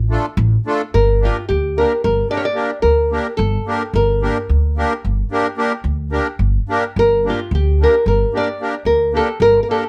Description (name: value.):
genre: balkan folk, Balkan wedding band.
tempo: 219 BPM (eighths).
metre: 11/8.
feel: straight.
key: G minor.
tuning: A4 = 440 Hz.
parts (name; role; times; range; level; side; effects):
nylon-string guitar; melody; 0.0-9.9 s; F4 to D5; -19 LUFS; equal; none.
upright bass; bass; 0.0-9.6 s; G1 to D2; -20 LUFS; equal; none.
accordion; accompaniment; 0.1-9.8 s; A3 to Bb4; -22 LUFS; equal; light tremolo tuning.
room: light reverb.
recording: none.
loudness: -17 LUFS.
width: mono.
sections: 0.0-7.0 A section; 7.0-9.9 A section.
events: none.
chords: 0.0 Dm; 0.9 Gm.